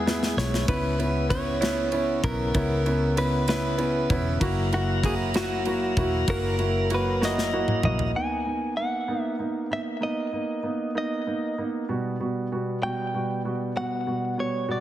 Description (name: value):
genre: six-eight pop ballad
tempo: 64 BPM (dotted quarters)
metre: 6/8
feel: straight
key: B major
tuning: A4 = 440 Hz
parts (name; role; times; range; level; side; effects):
- direct-recorded clean electric guitar; melody; 0.0-14.8 s; F#4 to G#5; -29 LUFS; equal; spring reverb, ping-pong delay
- tonewheel organ; sustained chords; 0.0-8.1 s; C#3 to A#5; -34 LUFS; left 1 dB; slow rotary speaker
- vintage muted fingered electric bass; bass; 0.0-8.1 s; E1 to E2; -28 LUFS; left 1 dB; none
- warm grand piano; accompaniment; 0.1-14.8 s; B2 to F#4; -28 LUFS; right 1 dB; none
- modern studio drum kit; drums; 0.1-8.1 s; kick drum, ride cymbal, snare drum, toms; -29 LUFS; equal; none
room: light reverb, small room ambience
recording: heavily compressed radio sound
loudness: -23 LUFS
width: side -12 dB against mid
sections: 0.0-8.1 A section; 8.1-14.8 B section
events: drum fill 0.0-0.7, 7.2-8.1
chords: 0.0 E; 0.7 C#m7; 4.4 F#7; 8.1 Bmaj7; 11.9 Gmaj7/B